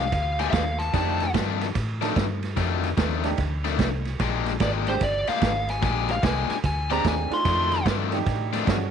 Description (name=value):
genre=electric blues shuffle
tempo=147 BPM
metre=4/4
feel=swing 65% on 8ths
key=F mixolydian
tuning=A4 = 440 Hz
part: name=biting lead guitar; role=melody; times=0.0-1.3, 4.6-7.8 s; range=C5 to C6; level=-27 LUFS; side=left 1 dB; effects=overdrive
part: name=warm concert grand piano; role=accompaniment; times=0.0-8.9 s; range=Ab3 to A4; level=-31 LUFS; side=right 12 dB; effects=none
part: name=cranked stack guitar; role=riff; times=0.0-8.8 s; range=F2 to G4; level=-29 LUFS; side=left 15 dB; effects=overdrive
part: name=vintage muted fingered electric bass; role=bass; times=0.0-8.9 s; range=G1 to A2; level=-28 LUFS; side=equal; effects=none
part: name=vintage drum kit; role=drums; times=0.1-8.8 s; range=kick drum, ride cymbal, snare drum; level=-27 LUFS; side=right 4 dB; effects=none
room=light reverb, studio reverb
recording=1960s-style stereo with parts hard left and right, lossy compression artefacts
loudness=-22 LUFS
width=side -8 dB against mid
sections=0.0-8.9 A section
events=none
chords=0.0 Bb13; 0.9 F13; 4.2 Bb13; 7.5 F13